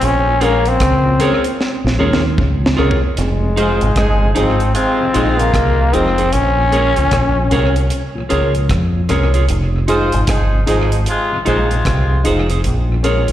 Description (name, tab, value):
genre	roots reggae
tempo	76 BPM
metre	4/4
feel	swing 62% on 16ths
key	F minor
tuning	A4 = 440 Hz
part	growling trombone	melody	0.0-7.9 s	Ab3 to Db4	-17 LUFS	left 2 dB	dub echo, slapback echo
part	deep dub fingered electric bass	bass	0.0-13.3 s	F1 to F2	-16 LUFS	equal	none
part	deep reggae drum kit	drums	0.0-13.3 s	hi-hat, kick drum, rim click, snare drum, toms	-21 LUFS	equal	tape echo, slapback echo
part	mellow tonewheel organ	accompaniment	0.3-13.3 s	F2 to Eb4	-28 LUFS	left 2 dB	chorus vibrato, slow rotary speaker, slapback echo
part	clean electric guitar	accompaniment	0.4-13.3 s	Eb4 to Db5	-23 LUFS	right 7 dB	dub echo, slapback echo
part	dark concert grand piano	stabs	0.4-13.2 s	Db4 to Bb4	-22 LUFS	left 4 dB	slapback echo
part	warm horn section	second line	3.6-12.2 s	C3 to C5	-21 LUFS	equal	dub echo, slapback echo
room	small room ambience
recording	live gig heard through the venue's PA, recital hall reverb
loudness	-12 LUFS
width	side -12 dB against mid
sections	0.0-3.2 A section; 3.2-13.3 B section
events	trombone solo 0.0-3.2; drum fill 1.6-3.2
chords	0.0 Bbm7; 3.2 Fm7; 6.3 Bbm7; 9.5 Fm7; 12.6 Bbm7